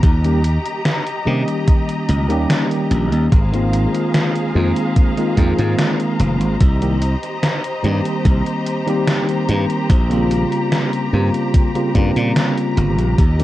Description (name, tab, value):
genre	vaporwave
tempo	73 BPM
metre	4/4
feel	straight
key	Bb dorian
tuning	A4 = 441 Hz
part	clear studio string section	sustained chords	0.0-13.4 s	G4 to Bb5	-26 LUFS	left 2 dB	none
part	glassy slap bass	bass	0.0-13.4 s	F1 to C3	-17 LUFS	equal	none
part	electronic kick drum	drums	0.0-13.4 s	none	-14 LUFS	equal	overdrive, studio reverb
part	gated 80s digital drum machine	drums	0.0-13.4 s	hi-hat, snare drum	-21 LUFS	equal	gated reverb, gated reverb snare, overdrive, studio reverb
part	tine electric piano	accompaniment	0.2-13.4 s	Db3 to G4	-19 LUFS	equal	medium stereo tremolo, analog chorus, analog delay
room	digital ambience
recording	echo-heavy mix, cassette tape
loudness	-15 LUFS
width	side -15 dB against mid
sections	0.0-13.4 A section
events	none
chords	0.0 Eb7; 3.3 Ab69; 6.6 Cm7; 9.9 Bbm69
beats	| 0.03 0.85 1.68 2.50 | 3.32 4.14 4.96 5.79 | 6.61 7.43 8.25 9.07 | 9.90 10.72 11.54 12.36 | 13.18